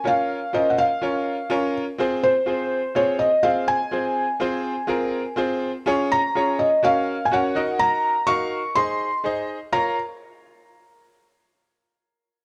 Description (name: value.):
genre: soul.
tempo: 124 BPM.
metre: 4/4.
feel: straight.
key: Bb minor.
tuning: A4 = 440 Hz.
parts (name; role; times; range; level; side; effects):
felt-muted upright piano; melody; 0.0-10.0 s; C5 to Db6; -23 LUFS; equal; none.
bright concert grand piano; accompaniment; 0.0-10.0 s; C4 to F5; -26 LUFS; equal; none.
room: light reverb.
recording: none.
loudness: -22 LUFS.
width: mono.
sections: 0.0-5.9 A section; 5.9-9.7 B section; 9.7-11.7 C section.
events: none.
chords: 0.0 Bbm; 2.0 Fm; 5.9 Db; 6.8 Gb; 7.6 Ebm; 8.8 Ab; 9.7 Bbm.